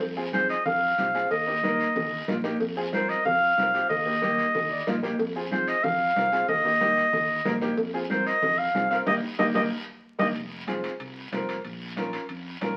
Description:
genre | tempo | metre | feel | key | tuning
latin, cumbia | 186 BPM | 4/4 | straight | F minor | A4 = 440 Hz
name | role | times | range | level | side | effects
fingered electric bass | bass | 0.0-12.8 s | F1 to F2 | -41 LUFS | equal | none
congas | percussion | 0.0-12.8 s | none | -36 LUFS | equal | none
cowbell and timbales | percussion | 0.0-12.8 s | none | -36 LUFS | equal | none
guiro | percussion | 0.0-12.8 s | none | -42 LUFS | equal | none
clear upright piano | accompaniment | 0.2-12.8 s | Bb3 to G5 | -33 LUFS | equal | none
warm clarinet | melody | 0.3-10.3 s | C5 to F5 | -26 LUFS | equal | none
room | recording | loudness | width
wet studio reverb, RT60 0.7 s | very old 78 rpm record, vinyl crackle | -26 LUFS | mono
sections
0.0-10.4 A section; 10.4-12.8 B section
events
upright piano fill 4.5-5.2; drum fill 9.1-10.4; band accent 9.1-10.4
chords
0.0 Fm; 1.3 Eb; 2.6 F5; 3.9 Eb; 5.2 Fm; 6.5 Eb; 7.8 F5; 9.1 Eb; 10.4 Fm; 11.6 Bbm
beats
| 0.01 0.33 0.66 0.98 | 1.31 1.63 1.96 2.28 | 2.60 2.93 3.25 3.58 | 3.90 4.22 4.55 4.87 | 5.19 5.52 5.84 6.16 | 6.49 6.81 7.13 7.45 | 7.78 8.10 8.42 8.74 | 9.07 9.39 9.71 10.03 | 10.36 10.68 11.00 11.32 | 11.65 11.97 12.29 12.62

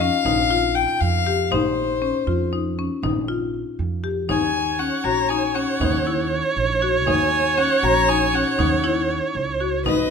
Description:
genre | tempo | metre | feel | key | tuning
contemporary instrumental, chamber music in an uneven meter | 237 BPM (eighths) | 11/8 | straight | unclear | A4 = 440 Hz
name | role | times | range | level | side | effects
warm violin | melody | 0.0-10.1 s | B#4 to A#5 | -23 LUFS | left 8 dB | none
marimba with hard mallets | arpeggios | 0.0-10.1 s | C#4 to G4 | -24 LUFS | left 5 dB | none
upright bass | bass | 0.0-10.1 s | A#1 to E#2 | -26 LUFS | right 4 dB | none
frame drum | percussion | 0.3-10.1 s | none | -30 LUFS | right 3 dB | none
warm viola | second line | 4.3-10.1 s | B4 to C#5 | -22 LUFS | right 5 dB | none
room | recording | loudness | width
moderate recital hall reverb, RT60 1.4 s | close, detailed microphones | -18 LUFS | side -6 dB against mid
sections
0.0-10.1 A section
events
none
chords
0.0 A#madd9; 4.3 D#m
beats
0.00 0.25 0.50 0.75 1.01 1.26 | 1.51 1.76 2.02 2.27 2.52 2.77 3.03 3.28 3.53 3.79 4.04 | 4.29 4.54 4.80 5.05 5.30 5.55 5.81 6.06 6.31 6.57 6.82 | 7.07 7.33 7.58 7.83 8.08 8.34 8.59 8.84 9.10 9.35 9.60 | 9.86

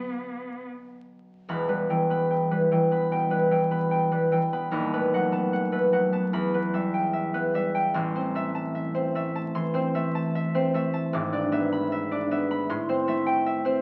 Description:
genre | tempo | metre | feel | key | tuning
classical, romantic duo for cello and harp | 75 BPM | 4/4 | rubato | E minor | A4 = 440 Hz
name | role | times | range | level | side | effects
warm cello | melody | 0.0-0.6 s | B3 | -37 LUFS | equal | none
concert harp | accompaniment | 0.0-13.8 s | D#1 to D6 | -26 LUFS | equal | none
room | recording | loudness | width
wet stone room reverb, RT60 1.3 s | very old 78 rpm record, vinyl crackle | -26 LUFS | mono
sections
0.0-1.5 A section; 1.5-13.8 B section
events
none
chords
0.0 Bm; 1.5 Em; 4.7 B7/D#; 6.3 Em; 7.9 Am; 11.1 E7/G#; 12.7 Am7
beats
0.65 | 1.49 2.31 3.13 3.92 | 4.73 5.53 6.33 7.13 | 7.95 8.75 9.55 10.35 | 11.13 11.91 12.70 13.47

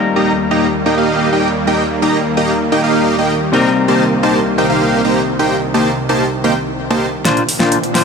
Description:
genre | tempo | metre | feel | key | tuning
EDM, festival progressive house | 129 BPM | 4/4 | straight | unclear | A4 = 436 Hz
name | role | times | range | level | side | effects
semi-hollow electric guitar | accompaniment | 0.0-8.0 s | Bb2 to C5 | -19 LUFS | left 4 dB | vintage 12-bit sampler grit, ping-pong delay
supersaw pad | sustained chords | 0.0-8.0 s | C2 to D4 | -19 LUFS | right 2 dB | none
dense compressed supersaw | riff | 0.2-8.0 s | Bb3 to Bb5 | -14 LUFS | right 1 dB | low-pass filter, ping-pong delay
pop drum kit | drums | 7.3-8.0 s | hi-hat, snare drum | -16 LUFS | equal | none
riser | sound effects | 7.5-8.0 s | none | -26 LUFS | left 1 dB | none
room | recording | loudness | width
moderate huge ambient reverb, RT60 6.7 s | none | -12 LUFS | side -5 dB against mid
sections
0.0-7.3 A section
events
drum fill 7.3-8.0; riser 7.5-8.0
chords
0.0 Eb; 3.5 Cm7; 7.3 Bbadd9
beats
0.28 0.74 1.21 | 1.67 2.14 2.60 3.07 | 3.53 4.00 4.46 4.93 | 5.39 5.86 6.32 6.79 | 7.25 7.72

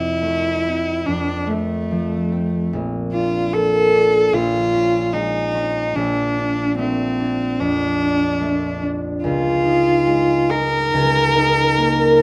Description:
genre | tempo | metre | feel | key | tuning
classical, impressionist duo for cello and harp | 73 BPM | 4/4 | rubato | unclear | A4 = 436 Hz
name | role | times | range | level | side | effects
rich cello | melody | 0.0-12.2 s | A3 to Bb4 | -20 LUFS | equal | none
concert harp | accompaniment | 0.0-12.2 s | Bb1 to Eb4 | -23 LUFS | equal | none
room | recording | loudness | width
moderate large studio reverb, RT60 1.2 s | none | -19 LUFS | mono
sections
0.0-12.2 A section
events
none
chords
0.0 F; 2.7 Bbmaj7; 4.3 Db/Bb; 6.0 Bbmaj7; 9.2 Dbadd9; 10.9 Eb5/Db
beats
0.22 1.07 1.90 | 2.72 3.53 4.34 5.14 | 5.97 6.79 7.60 8.42 | 9.24 10.08 10.93 11.76

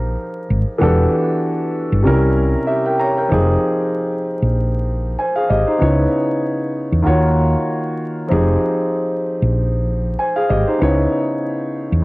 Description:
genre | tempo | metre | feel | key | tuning
hip hop | 96 BPM | 4/4 | swing 55% on 16ths | unclear | A4 = 440 Hz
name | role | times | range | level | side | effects
warm concert grand piano | accompaniment | 0.0-12.0 s | C3 to Bb5 | -17 LUFS | equal | cassette tape, high-pass filter, low-pass filter
woody fretless electric bass | bass | 0.0-12.0 s | E1 to Fb2 | -16 LUFS | equal | transformer saturation
room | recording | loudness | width
light reverb | home recording on cassette, vinyl crackle | -15 LUFS | side -21 dB against mid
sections
0.0-3.3 A section; 3.3-12.0 B section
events
none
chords
0.0 Fm11; 0.8 Em11; 2.1 C7b9; 3.3 Fm9; 5.8 Dbm9; 7.1 Ebm9; 8.3 Fm9; 10.8 Dbm9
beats
0.18 | 0.81 1.43 2.06 2.68 | 3.31 3.93 4.56 5.18 | 5.81 6.43 7.06 7.68 | 8.31 8.93 9.56 10.18 | 10.81 11.43

